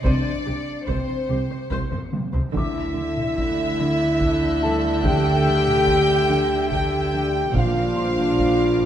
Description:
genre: cinematic, suspense film score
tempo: 72 BPM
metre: 3/4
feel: straight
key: unclear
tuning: A4 = 441 Hz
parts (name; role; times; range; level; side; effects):
- warm symphonic violin section; melody; 0.0-8.9 s; C5 to G5; -29 LUFS; equal; none
- dark chamber viola section; accompaniment; 0.0-8.9 s; D4 to E5; -30 LUFS; equal; none
- mellow French horn section; sustained chords; 0.0-8.9 s; C4 to G4; -23 LUFS; left 1 dB; none
- warm chamber cello section; riff; 0.0-8.9 s; Bb2 to D4; -29 LUFS; right 1 dB; none
- clear chamber double bass section; bass; 0.0-8.9 s; Bb1 to D2; -28 LUFS; right 3 dB; none
- taiko ensemble; drums; 0.0-8.9 s; none; -27 LUFS; equal; none
- felt-muted upright piano; texture; 0.0-8.9 s; A4 to Eb7; -35 LUFS; equal; none
- warm chamber violin section; texture; 0.0-8.9 s; D6 to C#7; -38 LUFS; left 2 dB; none
- warm chamber violin section; second line; 0.1-8.9 s; C5 to G5; -30 LUFS; right 1 dB; none
- warm chamber cello section; bass; 0.1-8.9 s; Bb2 to D3; -29 LUFS; left 1 dB; none
room: moderate scoring stage reverb, RT60 1.7 s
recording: dark, warm production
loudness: -19 LUFS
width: side -10 dB against mid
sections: 0.0-8.9 A section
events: drum fill 1.9-2.6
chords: 0.0 Cm; 2.6 Dsus2; 7.6 Bbadd9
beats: | 0.05 0.89 1.72 | 2.55 3.38 4.22 | 5.05 5.88 6.72 | 7.55 8.38

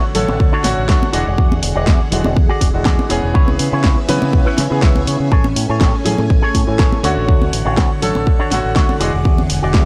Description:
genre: nu-disco, nu disco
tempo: 122 BPM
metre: 4/4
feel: swing 54% on 16ths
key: E mixolydian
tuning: A4 = 442 Hz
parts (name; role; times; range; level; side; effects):
- clear concert grand piano; accompaniment; 0.0-9.1 s; D3 to G#5; -23 LUFS; equal; tape echo
- string machine, full ensemble; sustained chords; 0.0-9.9 s; D3 to G#5; -27 LUFS; equal; phaser, ensemble chorus, sidechain pumping
- electric guitar with an envelope filter; riff; 0.0-9.9 s; D4 to G#5; -26 LUFS; equal; subtle chorus, tape echo
- pop drum kit; drums; 0.1-9.8 s; hi-hat, snare drum; -24 LUFS; equal; small room ambience
- fingered electric bass with an envelope filter; bass; 0.2-9.9 s; E1 to C#3; -22 LUFS; equal; tube saturation
- congas; percussion; 0.2-9.9 s; none; -26 LUFS; equal; none
- electronic kick drum; drums; 0.4-9.8 s; none; -16 LUFS; equal; small room ambience
room: digital ambience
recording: dry, gritty hardware recording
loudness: -15 LUFS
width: mono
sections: 0.0-9.9 A section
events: clean electric guitar fill 4.3-5.3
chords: 0.0 Dmaj7; 1.1 E9; 3.4 C#m7; 5.3 Amaj7; 7.0 Dmaj7; 9.0 E9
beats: 0.40 0.89 | 1.38 1.88 2.37 2.86 | 3.35 3.84 4.33 4.83 | 5.32 5.81 6.30 6.79 | 7.29 7.78 8.27 8.76 | 9.25 9.74

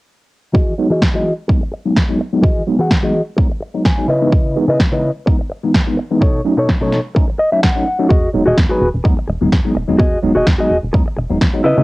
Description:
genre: filtered disco house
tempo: 127 BPM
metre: 4/4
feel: swing 54% on 16ths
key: E major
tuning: A4 = 441 Hz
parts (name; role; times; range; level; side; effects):
- direct-recorded clean electric guitar; riff; 0.5-11.8 s; B2 to G#5; -16 LUFS; equal; sidechain pumping, low-pass filter, cassette tape
- electronic kick drum; drums; 0.5-11.5 s; none; -15 LUFS; equal; overdrive, studio reverb, cassette tape
- bright tine electric piano; accompaniment; 0.8-11.8 s; E3 to D#4; -18 LUFS; equal; medium stereo tremolo, phaser, sidechain pumping, low-pass filter, cassette tape
- electronic snare drum; drums; 1.0-11.5 s; none; -19 LUFS; equal; overdrive, studio reverb, cassette tape
- plucky analog bass; bass; 8.1-11.8 s; E1 to C#3; -19 LUFS; equal; sidechain pumping, low-pass filter
room: moderate small room reverb, RT60 0.6 s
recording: home recording on cassette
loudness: -13 LUFS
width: side -20 dB against mid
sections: 0.5-11.8 A section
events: filter sweep 0.5-11.8; clean electric guitar fill 3.6-4.3, 7.2-8.1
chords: 0.5 Emaj9; 4.1 C#m9; 6.2 B9; 8.1 Emaj9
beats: | 0.55 1.02 1.49 1.96 | 2.44 2.91 3.38 3.85 | 4.33 4.80 5.27 5.74 | 6.21 6.69 7.16 7.63 | 8.11 8.58 9.05 9.52 | 9.99 10.47 10.94 11.41

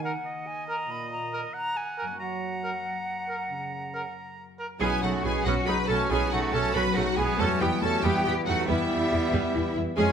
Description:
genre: cinematic, heroic adventure film score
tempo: 93 BPM (dotted quarters)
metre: 12/8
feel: straight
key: unclear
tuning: A4 = 440 Hz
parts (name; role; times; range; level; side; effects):
- bright concert flute; second line; 0.0-10.1 s; E5 to B5; -34 LUFS; equal; none
- warm trombone section; sustained chords; 0.0-10.1 s; Bb2 to C#4; -36 LUFS; right 4 dB; none
- concert harp; arpeggios; 0.0-10.1 s; Gb2 to B5; -36 LUFS; left 8 dB; none
- clear trumpet; stabs; 0.0-10.1 s; G3 to Bb4; -34 LUFS; right 2 dB; none
- bright oboe; second line; 0.3-4.4 s; Eb5 to Bb5; -37 LUFS; right 3 dB; none
- warm symphonic violin section; melody; 4.8-10.1 s; E5 to B5; -33 LUFS; left 2 dB; none
- rich symphonic violin section; second line; 4.8-10.1 s; E5 to B5; -35 LUFS; equal; none
- warm clarinet; second line; 4.8-10.1 s; B3 to G#4; -36 LUFS; left 2 dB; none
- rich symphonic viola section; accompaniment; 4.8-10.1 s; C#3 to C#4; -32 LUFS; right 2 dB; none
- mellow French horn section; sustained chords; 4.8-10.1 s; E3 to B3; -36 LUFS; left 2 dB; none
- rich symphonic double bass section; bass; 4.8-10.1 s; B1 to E#2; -30 LUFS; right 3 dB; none
- warm symphonic cello section; bass; 4.8-10.1 s; E4 to B4; -30 LUFS; right 2 dB; none
room: moderate scoring stage reverb, RT60 2.0 s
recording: none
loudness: -25 LUFS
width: side -7 dB against mid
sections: 0.0-4.8 A section; 4.8-10.1 B section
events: none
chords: 0.0 Ebm; 2.2 Gb; 4.8 Bsus2; 7.4 Em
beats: 0.26 0.90 1.55 | 2.20 2.85 3.51 4.16 | 4.82 5.46 6.11 6.75 | 7.39 8.04 8.69 9.33 | 9.97

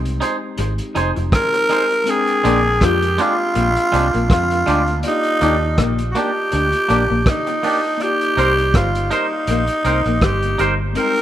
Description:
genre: lovers rock reggae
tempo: 81 BPM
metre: 4/4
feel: swing 56% on 16ths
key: C minor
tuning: A4 = 441 Hz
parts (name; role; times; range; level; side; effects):
- mellow tine electric piano; accompaniment; 0.0-11.2 s; Ab3 to G5; -28 LUFS; left 5 dB; phaser
- electric guitar through a small old amp; riff; 0.0-10.8 s; F3 to F4; -26 LUFS; left 6 dB; wide subtle chorus, tape echo
- vintage muted fingered electric bass; bass; 0.0-10.9 s; F1 to F2; -21 LUFS; equal; none
- vintage drum kit; drums; 0.1-11.2 s; hi-hat, kick drum, rim click; -22 LUFS; equal; none
- twangy electric guitar; stabs; 0.2-10.7 s; Ab3 to C5; -23 LUFS; right 3 dB; spring reverb, tape echo
- growling tenor saxophone; melody; 1.3-11.2 s; Eb4 to Bb4; -18 LUFS; equal; tape echo
room: little or no reverb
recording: rough home demo mix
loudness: -15 LUFS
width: side -12 dB against mid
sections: 0.0-11.2 A section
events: none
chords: 0.0 Fm7; 2.1 Bb13; 5.0 Ebmaj7; 8.0 Cm7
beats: 0.59 1.33 | 2.07 2.81 3.55 4.29 | 5.03 5.77 6.51 7.26 | 8.00 8.74 9.48 10.22 | 10.96

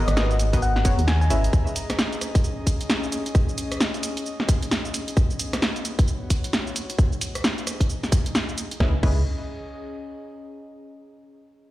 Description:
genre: UK garage, two-step garage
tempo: 132 BPM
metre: 4/4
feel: swing 61% on 16ths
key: C# dorian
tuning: A4 = 440 Hz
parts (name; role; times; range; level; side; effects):
- punchy chord stab; stabs; 0.0-1.7, 8.8-9.2 s; B3 to E5; -29 LUFS; equal; chorus, cassette tape, digital delay
- organ-like FM bass; bass; 0.0-1.5, 8.8-9.2 s; F#1 to D#2; -21 LUFS; equal; none
- airy breathy pad; texture; 0.0-10.6 s; B3 to A#5; -34 LUFS; left 1 dB; chorus, sidechain pumping
- thumb-piano-like synth pluck; melody; 0.1-1.3 s; D#5 to G#5; -29 LUFS; left 3 dB; chorus, cassette tape, digital delay
- punchy analog drum machine; drums; 0.1-9.1 s; crash cymbal, hi-hat, rim click, shaker, snare drum; -26 LUFS; equal; none
- electronic kick drum; drums; 0.5-9.1 s; none; -19 LUFS; equal; none
room: light reverb, digital ambience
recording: played on a big sound system in a bare room, large studio reverb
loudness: -21 LUFS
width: side -16 dB against mid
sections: 0.0-8.8 A section; 8.8-10.6 B section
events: fade-out on analog synth pad 0.0-8.8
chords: 0.0 G#m7; 1.5 C#m7; 4.9 B; 6.8 G#m7; 8.8 C#m7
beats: 0.17 0.62 1.08 | 1.53 1.99 2.44 2.90 | 3.35 3.80 4.26 4.71 | 5.17 5.62 6.08 6.53 | 6.99 7.44 7.89 8.35 | 8.80 9.26 9.71 10.17

